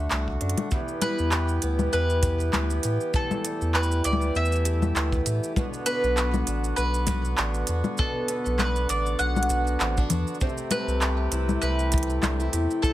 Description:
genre	folktronica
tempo	99 BPM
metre	4/4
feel	swing 56% on 16ths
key	E minor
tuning	A4 = 438 Hz
part	mandolin	melody	0.0-12.9 s	A4 to F#5	-30 LUFS	equal	vintage 12-bit sampler grit, digital delay
part	hand-pumped harmonium	sustained chords	0.0-12.9 s	C3 to G4	-33 LUFS	left 1 dB	none
part	picked twelve-string acoustic guitar	arpeggios	0.0-12.9 s	E2 to G4	-31 LUFS	right 1 dB	none
part	warm sub bass	bass	0.0-12.7 s	A1 to A2	-26 LUFS	equal	none
part	organic electronic drum kit	drums	0.1-12.9 s	congas, handclaps, hi-hat, shaker	-29 LUFS	left 2 dB	overdrive
part	kick drum	drums	0.3-12.9 s	none	-28 LUFS	equal	none
room	studio reverb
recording	none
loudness	-22 LUFS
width	side -14 dB against mid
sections	0.7-12.9 A section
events	drum fill 0.4-0.7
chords	0.0 D; 0.7 Em; 5.6 Bm; 10.4 Am7/C

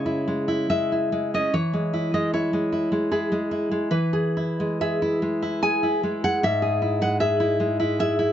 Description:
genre	romantic piece for solo classical guitar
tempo	64-79 BPM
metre	3/4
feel	rubato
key	C# minor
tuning	A4 = 440 Hz
part	nylon-string guitar	solo	0.0-8.3 s	G#2 to G#5	-21 LUFS	equal	none
room	light reverb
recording	nothing above 7.7 kHz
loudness	-21 LUFS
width	side -10 dB against mid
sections	0.0-8.3 A section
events	none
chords	0.0 C#m; 1.5 C#m/E; 6.4 E/G#

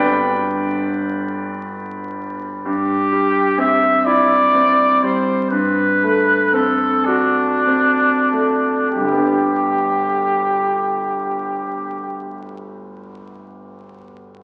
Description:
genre	classical, romantic duo for trumpet and grand piano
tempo	29-45 BPM (dotted quarters)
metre	6/8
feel	rubato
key	G major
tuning	A4 = 440 Hz
part	bright concert grand piano	accompaniment	0.0-14.4 s	G1 to G5	-22 LUFS	equal	none
part	clear trumpet	melody	2.6-12.4 s	D4 to E5	-19 LUFS	equal	none
room	wet scoring stage reverb, RT60 1.6 s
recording	very old 78 rpm record, vinyl crackle, nothing above 10.4 kHz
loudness	-17 LUFS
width	mono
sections	0.0-2.6 A section; 2.6-8.9 B section; 8.9-12.2 C section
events	slowing down 1.2-8.9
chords	0.0 G; 2.6 C/G; 5.5 D7/G; 8.9 G

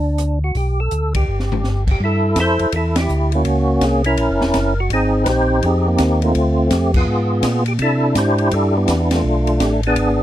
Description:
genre	soul jazz organ trio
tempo	166 BPM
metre	4/4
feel	swing 64% on 8ths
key	unclear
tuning	A4 = 440 Hz
part	percussive tonewheel organ	melody	0.0-10.2 s	A3 to C5	-18 LUFS	equal	slow rotary speaker, chorus vibrato
part	mellow tonewheel organ	bass	0.0-10.2 s	E1 to C3	-19 LUFS	equal	overdrive, chorus vibrato, slow rotary speaker
part	open jazz drum kit	drums	0.2-10.1 s	crash cymbal, hi-hat, kick drum, ride cymbal, rim click, snare drum, toms	-24 LUFS	equal	none
room	little or no reverb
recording	dry, close 1970s-style studio recording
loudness	-15 LUFS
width	side -12 dB against mid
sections	0.0-2.0 A section; 2.0-10.2 B section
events	band accent 1.1, 2.9, 6.9, 9.1; drum fill 1.3-1.6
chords	0.0 G; 1.3 N.C.; 2.0 C6; 3.5 F#7; 4.9 Abmaj9; 6.4 Dm7; 7.1 Abm69; 7.8 Cmaj9; 9.2 Bm7b5

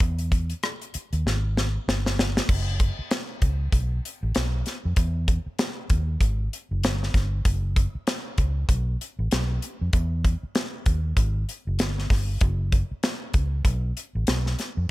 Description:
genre	lush 1970s-style soul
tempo	97 BPM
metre	4/4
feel	swing 58% on 16ths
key	F# dorian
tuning	A4 = 439 Hz
part	vintage muted fingered electric bass	bass	0.0-14.9 s	F#1 to E#2	-25 LUFS	equal	none
part	modern studio drum kit	drums	0.0-14.8 s	crash cymbal, hi-hat, kick drum, rim click, snare drum	-24 LUFS	equal	none
room	little or no reverb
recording	none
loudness	-23 LUFS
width	side -19 dB against mid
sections	0.0-2.5 A section; 2.5-14.9 B section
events	drum fill 1.2-2.5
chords	none

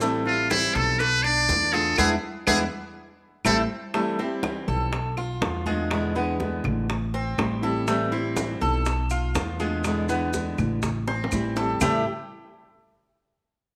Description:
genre	latin, Cuban son and guajira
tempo	122 BPM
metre	4/4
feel	straight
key	A minor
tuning	A4 = 444 Hz
part	nylon-string guitar	accompaniment	0.0-12.0 s	A2 to F4	-32 LUFS	equal	none
part	Cuban tres	arpeggios	0.0-12.0 s	G#3 to A4	-31 LUFS	equal	none
part	upright bass	bass	0.0-12.0 s	A1 to E2	-31 LUFS	equal	none
part	congas	percussion	0.0-11.9 s	none	-36 LUFS	equal	none
part	cowbell and bongos	percussion	0.0-11.9 s	none	-35 LUFS	equal	none
part	maracas	percussion	0.0-3.6, 7.9-11.9 s	none	-41 LUFS	equal	none
part	trumpet with metal mute	melody	0.3-3.6 s	E4 to D5	-24 LUFS	equal	none
part	claves	percussion	0.5-11.9 s	none	-36 LUFS	equal	none
room	moderate echo chamber reverb, RT60 1.4 s, studio reverb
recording	none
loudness	-25 LUFS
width	mono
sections	0.0-3.9 A section; 3.9-11.8 B section; 11.8-13.8 C section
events	band accent 2.0-3.9; drum fill 11.1-11.8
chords	0.0 Am7; 1.0 Bm7b5; 2.0 E7; 3.0 Am7; 4.9 Bm7b5; 5.9 E7; 6.9 Am7; 8.9 Bm7b5; 9.8 E7; 10.8 Am7; 11.8 A7(no3)

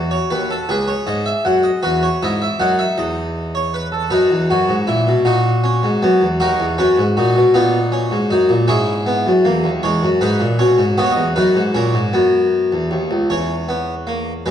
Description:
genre	classical, baroque-style 4-part fugue for harpsichord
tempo	52 BPM (dotted quarters)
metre	12/8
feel	straight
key	unclear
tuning	A4 = 440 Hz
part	harpsichord	solo	0.0-14.5 s	C#2 to F#5	-14 LUFS	equal	none
room	wet recital hall reverb, RT60 1.4 s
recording	worn, warbling old tape, cassette tape, warbly pitch drift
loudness	-14 LUFS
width	side -9 dB against mid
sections	0.0-13.3 A section; 13.3-14.5 B section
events	none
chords	0.0 F#5; 1.8 E5; 4.1 B; 6.4 B/D#; 13.3 E5

